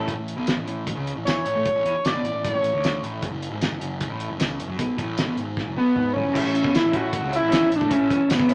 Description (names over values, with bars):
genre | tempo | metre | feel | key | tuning
indie rock | 153 BPM | 4/4 | straight | A major | A4 = 442 Hz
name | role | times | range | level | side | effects
tonewheel organ | sustained chords | 0.0-0.1, 6.4-8.5 s | C#5 to E6 | -40 LUFS | equal | none
electric guitar through a small old amp | riff | 0.0-8.5 s | F#2 to A3 | -34 LUFS | equal | none
electric guitar through a small old amp | riff | 0.0-0.6, 6.3-8.5 s | E3 to E4 | -33 LUFS | equal | none
fuzz picked electric bass | bass | 0.0-8.5 s | F#1 to A2 | -33 LUFS | equal | overdrive
cloth-damped thuddy drum kit | drums | 0.1-8.5 s | crash cymbal, hi-hat, kick drum, snare drum, tambourine, toms | -29 LUFS | equal | none
overdriven synth lead | melody | 1.2-3.0, 5.8-8.5 s | B3 to D5 | -23 LUFS | equal | distortion
room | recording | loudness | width
moderate large studio reverb, RT60 0.9 s | none | -24 LUFS | mono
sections
0.1-6.4 A section; 6.4-8.5 B section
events
drum fill 5.6-6.4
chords
0.1 A; 3.2 F#5; 6.4 A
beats
| 0.07 0.47 0.86 1.25 | 1.65 2.04 2.43 2.82 | 3.22 3.61 4.00 4.39 | 4.79 5.18 5.57 5.96 | 6.35 6.74 7.13 7.52 | 7.91 8.30